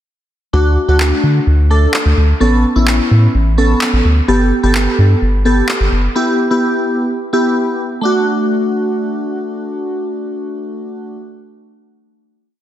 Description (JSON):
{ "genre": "dance-pop", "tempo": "128 BPM", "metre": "4/4", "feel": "straight", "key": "D major", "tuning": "A4 = 440 Hz", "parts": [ { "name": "glassy digital keys", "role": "accompaniment", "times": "0.5-11.2 s", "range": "A3 to A4", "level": "-15 LUFS", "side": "equal", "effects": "chorus" }, { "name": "round analog bass", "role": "bass", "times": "0.5-6.1 s", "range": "F#1 to D3", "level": "-12 LUFS", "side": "equal", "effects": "none" }, { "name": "electronic handclaps", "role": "drums", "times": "1.0-5.8 s", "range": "none", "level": "-21 LUFS", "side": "equal", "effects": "overdrive" } ], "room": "light reverb, digital ambience", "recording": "dense, heavily limited modern master", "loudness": "-12 LUFS", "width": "side -11 dB against mid", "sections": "0.5-8.0 verse; 8.0-11.8 final chord", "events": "none", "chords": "0.5 D; 2.4 Aadd9; 4.3 Gadd9; 6.2 Em; 8.0 D" }